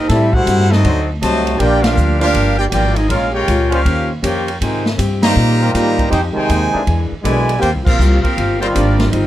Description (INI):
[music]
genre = jazz, big band swing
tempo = 159 BPM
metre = 4/4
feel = swing 64% on 8ths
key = Eb major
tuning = A4 = 440 Hz
[part]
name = bright trumpet section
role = melody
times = 0.0-9.3 s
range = C4 to Bb5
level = -20 LUFS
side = left 1 dB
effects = none
[part]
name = warm trombone section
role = second line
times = 0.0-9.3 s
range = B2 to G4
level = -18 LUFS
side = right 2 dB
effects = none
[part]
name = picked plugged-in steel-string acoustic guitar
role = accompaniment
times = 0.1-9.3 s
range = G2 to C5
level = -24 LUFS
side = left 5 dB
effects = none
[part]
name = clear trombone section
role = sustained chords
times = 0.1-9.1 s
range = Eb3 to C5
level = -22 LUFS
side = left 1 dB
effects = none
[part]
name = upright bass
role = bass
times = 0.1-9.3 s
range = G1 to Bb2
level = -16 LUFS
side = equal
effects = none
[part]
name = swinging big-band drum kit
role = drums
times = 0.1-9.2 s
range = crash cymbal, hi-hat, kick drum, ride cymbal, snare drum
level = -22 LUFS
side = equal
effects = none
[sound]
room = light reverb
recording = dark, warm production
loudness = -12 LUFS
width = side -13 dB against mid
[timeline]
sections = 0.0-9.3 A section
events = band accent 1.8, 5.2, 7.8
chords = 0.1 Am7; 0.8 D7b9; 1.6 Gm7; 3.1 Bbm7; 3.9 Eb13; 4.6 Abmaj13; 6.1 Fm9; 6.9 E7#11; 7.6 Eb69